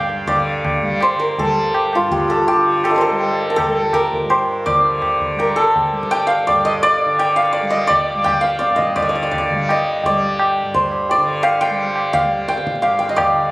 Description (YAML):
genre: indian classical, Hindustani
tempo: 167 BPM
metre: 3/4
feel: straight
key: G raga darbari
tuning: A4 = 441 Hz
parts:
  - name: santur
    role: melody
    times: 0.0-13.5 s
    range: F4 to G5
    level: -16 LUFS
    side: equal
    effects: none
  - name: tanpura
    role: drone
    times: 0.0-13.5 s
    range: G2 to G3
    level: -24 LUFS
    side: equal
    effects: none
  - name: tabla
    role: percussion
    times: 0.1-13.3 s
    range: none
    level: -23 LUFS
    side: equal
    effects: none
room: moderate recital hall reverb, RT60 1.4 s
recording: recorded on a phone in the room, studio reverb, compression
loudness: -14 LUFS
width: side -21 dB against mid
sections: 0.3-9.0 A section; 9.0-13.5 B section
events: speeding up 0.0-13.5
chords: none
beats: | 0.27 0.64 1.01 | 1.38 1.74 2.11 | 2.48 2.84 3.21 | 3.57 3.94 4.30 | 4.67 5.03 5.39 | 5.75 6.11 6.47 | 6.83 7.19 7.55 | 7.91 8.26 8.62 | 8.97 9.33 9.68 | 10.04 10.39 10.74 | 11.10 11.45 11.80 | 12.15 12.50 12.85 | 13.20